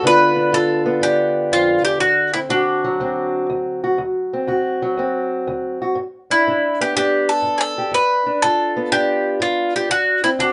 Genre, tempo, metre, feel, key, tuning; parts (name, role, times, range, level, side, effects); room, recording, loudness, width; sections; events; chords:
acoustic country blues, solo or duo; 122 BPM; 4/4; swing 67% on 8ths; A4 = 440 Hz
bowl-back mandolin; melody; 0.0-10.5 s; D4 to B4; -20 LUFS; equal
fingerpicked steel-string acoustic guitar; accompaniment; 0.0-10.5 s; D2 to G4; -22 LUFS; equal
moderate studio reverb, RT60 0.7 s; band playing live in one room, nothing above 10.7 kHz; -18 LUFS; mono
0.0-10.5 A section
0.0 G7; 2.0 D7; 6.0 G7; 9.9 D7